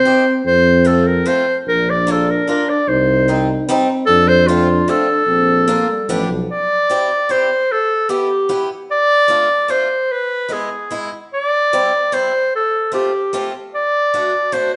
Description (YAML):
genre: alpine folk, alpine dance band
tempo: 150 BPM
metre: 3/4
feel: straight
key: Bb major, C major from 6.5 s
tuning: A4 = 440 Hz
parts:
  - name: bright clarinet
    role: melody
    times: 0.0-14.8 s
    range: F4 to D5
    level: -17 LUFS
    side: equal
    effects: none
  - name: mellow euphonium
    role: second line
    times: 0.0-6.5 s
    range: F3 to Eb4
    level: -22 LUFS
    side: equal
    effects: none
  - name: warm tuba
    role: bass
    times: 0.0-6.5 s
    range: A1 to F2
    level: -21 LUFS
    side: equal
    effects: none
  - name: picked swing-style acoustic guitar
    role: accompaniment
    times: 0.1-14.7 s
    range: G3 to G4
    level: -26 LUFS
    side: equal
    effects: none
room: wet stone room reverb, RT60 1.0 s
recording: band playing live in one room, nothing above 10.8 kHz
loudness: -16 LUFS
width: mono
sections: 0.0-6.5 A section; 6.5-14.8 B section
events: none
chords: 0.4 F; 1.7 Bb; 2.9 Cm; 4.1 F; 5.3 Bb; 6.1 G7; 6.5 Cadd9; 7.7 Em; 8.9 Dm; 10.1 E; 11.3 C; 12.5 F; 13.7 D